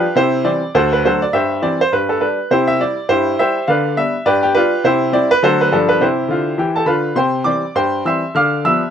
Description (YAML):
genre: jazz, stride piano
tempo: 206 BPM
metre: 4/4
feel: swing 60% on 8ths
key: C major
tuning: A4 = 440 Hz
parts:
  - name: bright upright piano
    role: solo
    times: 0.0-8.9 s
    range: D2 to F6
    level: -13 LUFS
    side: equal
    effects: none
room: light reverb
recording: close, detailed microphones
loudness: -13 LUFS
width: side -8 dB against mid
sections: 0.0-7.2 A section; 7.2-8.9 A section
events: none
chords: 0.2 C; 0.8 D; 1.3 C/G; 1.9 G; 2.5 C; 3.7 G7/D; 4.3 G7; 4.8 C; 5.4 D7; 5.7 G7; 6.0 C; 8.3 G7/D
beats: | 0.17 0.47 0.76 1.05 | 1.34 1.63 1.93 2.22 | 2.51 2.80 3.10 3.39 | 3.68 3.97 4.26 4.55 | 4.85 5.14 5.43 5.72 | 6.01 6.31 6.60 6.89 | 7.18 7.47 7.77 8.06 | 8.35 8.64